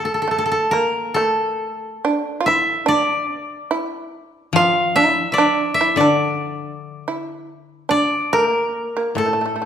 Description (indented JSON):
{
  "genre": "japanese traditional, Japanese chamber music",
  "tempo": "66-74 BPM",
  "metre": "4/4",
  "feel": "rubato",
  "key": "A miyako bushi",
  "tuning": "A4 = 440 Hz",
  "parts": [
    { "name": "koto", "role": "melody", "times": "0.0-9.7 s", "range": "A4 to F5", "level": "-19 LUFS", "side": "left 1 dB", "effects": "none" },
    { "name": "shamisen", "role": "second line", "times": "0.0-9.7 s", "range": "A3 to F4", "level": "-22 LUFS", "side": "right 3 dB", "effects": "none" },
    { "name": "koto", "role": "accompaniment", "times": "0.0-9.7 s", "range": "A2 to F3", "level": "-23 LUFS", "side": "left 5 dB", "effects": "none" }
  ],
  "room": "moderate recital hall reverb, RT60 1.4 s",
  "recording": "recorded in a church or concert hall",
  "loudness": "-16 LUFS",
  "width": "side -9 dB against mid",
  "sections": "0.0-9.7 A section",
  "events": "none",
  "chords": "none",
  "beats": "0.27 | 1.15 2.02 2.88 3.72 | 4.56 5.38 6.21 7.06 | 7.90 8.73 9.61"
}